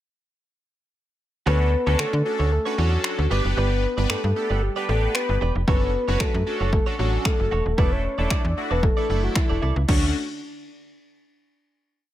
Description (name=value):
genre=dance-pop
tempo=114 BPM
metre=4/4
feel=straight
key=D major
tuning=A4 = 440 Hz
part: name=soft octave-layered synth lead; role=melody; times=1.5-10.1 s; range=D4 to D5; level=-27 LUFS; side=left 2 dB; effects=chorus, digital delay
part: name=big bright polysynth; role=accompaniment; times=1.5-10.1 s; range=A3 to B4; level=-29 LUFS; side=equal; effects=chorus, phaser, sidechain pumping
part: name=direct-recorded clean electric guitar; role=riff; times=1.5-10.1 s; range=D4 to D5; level=-33 LUFS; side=right 8 dB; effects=wide subtle chorus
part: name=slap-like FM bass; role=bass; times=1.5-10.1 s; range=Eb1 to D3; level=-22 LUFS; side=equal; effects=sidechain pumping
part: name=punchy analog drum machine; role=drums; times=2.0-10.0 s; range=crash cymbal, finger snaps, kick drum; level=-22 LUFS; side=equal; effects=overdrive
room=digital ambience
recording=none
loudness=-20 LUFS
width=side -13 dB against mid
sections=1.5-9.9 verse; 9.9-12.0 final chord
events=none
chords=1.5 Dmaj7; 3.3 G; 5.7 Dmaj7/F#; 7.8 Asus4/E; 9.9 Dmaj7